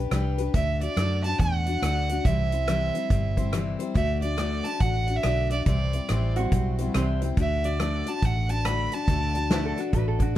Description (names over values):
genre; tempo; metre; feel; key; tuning
honky-tonk and classic country; 141 BPM; 4/4; swing 63% on 8ths; D mixolydian; A4 = 440 Hz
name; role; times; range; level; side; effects
picked steel-string acoustic guitar; accompaniment; 0.0-10.4 s; C3 to D5; -30 LUFS; left 5 dB; none
vintage muted fingered electric bass; bass; 0.0-10.4 s; G1 to F#2; -26 LUFS; equal; none
natural country drum kit; drums; 0.1-10.3 s; hi-hat, kick drum, rim click, snare drum; -27 LUFS; equal; none
clear fiddle; melody; 0.5-9.8 s; D5 to B5; -29 LUFS; right 3 dB; none
lap resonator guitar; second line; 6.4-10.4 s; C4 to B4; -32 LUFS; right 5 dB; none
room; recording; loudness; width
light reverb; dark, warm production; -23 LUFS; side -13 dB against mid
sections
0.0-10.4 A section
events
none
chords
0.0 G; 0.5 D; 2.3 C; 4.0 D; 5.7 C; 7.4 D